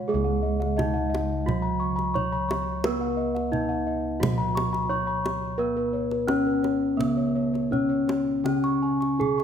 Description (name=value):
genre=Javanese gamelan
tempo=86 BPM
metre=4/4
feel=uneven beats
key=Db slendro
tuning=A4 = 438 Hz
part: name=gamelan-type bronze metallophone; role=melody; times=0.0-9.4 s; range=Cb4-45c to Db5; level=-27 LUFS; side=left 1 dB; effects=none
part: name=gamelan-type bronze metallophone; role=accompaniment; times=0.0-9.4 s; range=Db3 to Cb4-45c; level=-31 LUFS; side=right 7 dB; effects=none
part: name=gamelan-type bossed gongs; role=arpeggios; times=0.0-9.4 s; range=Cb5-45c to Db6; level=-30 LUFS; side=left 2 dB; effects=none
part: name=gamelan-type bossed gongs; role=bass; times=0.0-9.4 s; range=Db2 to Cb5-45c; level=-30 LUFS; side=left 2 dB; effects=none
part: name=kendang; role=percussion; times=0.6-9.4 s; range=none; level=-32 LUFS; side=right 1 dB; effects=none
room=wet recital hall reverb, RT60 1.7 s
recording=none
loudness=-23 LUFS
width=side -8 dB against mid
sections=0.1-9.4 A section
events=none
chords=none